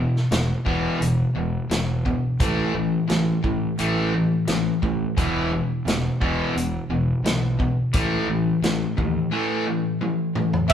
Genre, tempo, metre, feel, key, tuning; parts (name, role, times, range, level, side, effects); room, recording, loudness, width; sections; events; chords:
classic rock; 87 BPM; 4/4; straight; A4 = 442 Hz
cranked stack guitar; riff; 0.0-10.7 s; E2 to B3; -24 LUFS; left 5 dB; overdrive
overdriven electric guitar; riff; 0.0-10.7 s; E2 to A3; -26 LUFS; right 6 dB
fuzz fingered electric bass; bass; 0.0-10.7 s; E1 to D#2; -28 LUFS; equal; overdrive
vintage drum kit; drums; 0.2-10.7 s; crash cymbal, hi-hat, kick drum, snare drum, toms; -25 LUFS; equal
string machine, violas; sustained chords; 10.7 s; barely audible
wet studio reverb, RT60 0.9 s; band playing live in one room, lossy compression artefacts; -20 LUFS; side -9 dB against mid
0.0-10.7 A section
drum fill 10.0-10.7
0.0 E5; 2.4 A5; 5.2 E5; 7.9 A5